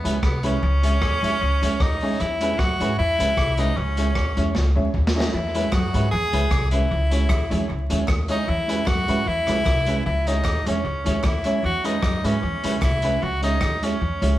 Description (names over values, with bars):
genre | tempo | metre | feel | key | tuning
ska | 152 BPM | 4/4 | swing 53% on 8ths | E major | A4 = 441 Hz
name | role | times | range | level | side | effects
edgy tenor saxophone | melody | 0.0-14.4 s | B3 to G#4 | -25 LUFS | left 1 dB | none
mellow electric guitar | accompaniment | 0.0-14.3 s | G#3 to E4 | -29 LUFS | right 4 dB | spring reverb
honky-tonk upright piano | stabs | 0.0-14.4 s | C#4 to C#5 | -29 LUFS | left 1 dB | none
upright bass | bass | 0.1-14.4 s | C2 to G#2 | -24 LUFS | equal | none
crunchy breakbeat drum kit | drums | 0.1-14.3 s | hi-hat, kick drum, rim click, snare drum | -26 LUFS | equal | dub echo
semi-hollow electric guitar | riff | 5.3-14.3 s | C3 to G#3 | -34 LUFS | left 1 dB | none
group handclap | percussion | 5.7-13.7 s | none | -43 LUFS | right 2 dB | none
room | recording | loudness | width
wet stone room reverb, RT60 1.1 s | band playing live in one room, vinyl crackle | -19 LUFS | side -14 dB against mid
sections
0.0-14.4 A section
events
drum fill 4.5-5.3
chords
0.0 E6; 0.6 C#m; 2.2 E6; 3.8 C#m; 5.3 E6; 6.9 C#m; 8.5 E6; 10.1 C#m; 11.6 E6; 13.2 C#m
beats
0.23 | 0.63 1.02 1.41 1.80 | 2.20 2.59 2.98 3.37 | 3.77 4.16 4.55 4.94 | 5.33 5.73 6.12 6.51 | 6.91 7.30 7.69 8.09 | 8.48 8.88 9.27 9.66 | 10.06 10.45 10.85 11.24 | 11.64 12.03 12.43 12.82 | 13.22 13.61 14.01